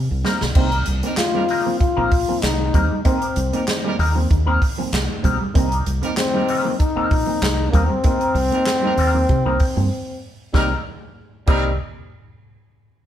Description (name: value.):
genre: funk.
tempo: 96 BPM.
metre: 4/4.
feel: straight.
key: C minor.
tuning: A4 = 441 Hz.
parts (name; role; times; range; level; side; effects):
fingered electric bass; bass; 0.0-11.8 s; Bb1 to C3; -22 LUFS; equal; none.
reed electric piano; stabs; 0.1-11.7 s; C3 to C4; -28 LUFS; right 4 dB; fast tremolo.
electric guitar with an envelope filter; accompaniment; 0.2-11.7 s; C4 to Bb4; -26 LUFS; left 3 dB; wah.
mellow electric guitar; riff; 0.2-11.7 s; Eb3 to C4; -29 LUFS; right 3 dB; none.
swinging big-band drum kit; drums; 0.2-11.6 s; crash cymbal, handclaps, hi-hat, kick drum, snare drum; -21 LUFS; equal; none.
clear horn section; second line; 1.0-11.7 s; G3 to Bb4; -30 LUFS; right 3 dB; none.
warm trombone; melody; 1.2-11.8 s; G3 to F4; -22 LUFS; left 3 dB; none.
room: light reverb.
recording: band playing live in one room.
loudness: -17 LUFS.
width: side -11 dB against mid.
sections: 0.0-10.5 A section; 10.5-13.0 B section.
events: drum fill 0.0-0.6; break 9.9-10.5.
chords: 0.0 Cm7.